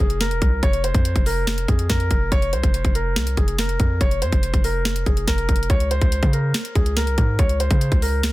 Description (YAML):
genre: hip hop, trap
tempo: 142 BPM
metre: 4/4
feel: half-time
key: F minor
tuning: A4 = 440 Hz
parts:
  - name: warm concert grand piano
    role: melody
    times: 0.0-8.3 s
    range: Ab4 to Db5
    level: -25 LUFS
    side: equal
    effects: digital delay
  - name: hard-hitting 808-style bass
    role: bass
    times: 0.0-8.3 s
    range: E1 to Db3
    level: -22 LUFS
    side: equal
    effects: none
  - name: trap drum kit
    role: drums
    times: 0.1-8.3 s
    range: hi-hat, kick drum, snare drum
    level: -20 LUFS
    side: equal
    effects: none
room: little or no reverb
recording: dense, heavily limited modern master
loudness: -17 LUFS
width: side -18 dB against mid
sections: 0.0-8.3 A section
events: none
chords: 0.0 F5; 5.7 Db5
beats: 0.21 | 0.63 1.05 1.47 1.90 | 2.32 2.74 3.16 3.59 | 4.01 4.43 4.85 5.28 | 5.70 6.12 6.54 6.97 | 7.39 7.81 8.23